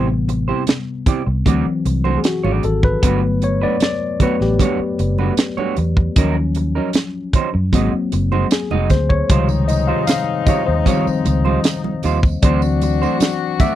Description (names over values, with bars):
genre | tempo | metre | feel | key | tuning
lush 1970s-style soul | 77 BPM | 4/4 | straight | unclear | A4 = 440 Hz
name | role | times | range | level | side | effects
tine electric piano | accompaniment | 0.0-13.8 s | C3 to F5 | -20 LUFS | left 4 dB | none
electric guitar through a small old amp | riff | 0.0-13.8 s | Gb3 to Eb5 | -22 LUFS | right 8 dB | none
vintage muted fingered electric bass | bass | 0.0-13.6 s | F1 to Gb2 | -18 LUFS | equal | none
tight funk drum kit | drums | 0.3-13.8 s | hi-hat, kick drum, snare drum | -16 LUFS | equal | none
congas | percussion | 0.3-13.8 s | none | -26 LUFS | right 7 dB | none
warm horn section | stabs | 9.3-13.8 s | Ab3 to F#4 | -24 LUFS | left 12 dB | none
tambourine | percussion | 9.5-13.8 s | none | -36 LUFS | right 26 dB | none
room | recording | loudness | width
little or no reverb | dry, close 1970s-style studio recording | -15 LUFS | side -12 dB against mid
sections
0.0-13.8 A section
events
tine electric piano solo 0.0-13.8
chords
0.0 Am7; 1.5 D7; 3.0 Gmaj9; 6.2 Ebm7; 7.7 Ab7; 9.3 Dbmaj9#11; 12.4 D7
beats
0.68 1.46 2.25 | 3.03 3.81 4.60 5.38 | 6.16 6.95 7.73 8.51 | 9.30 10.08 10.86 11.65 | 12.43 13.21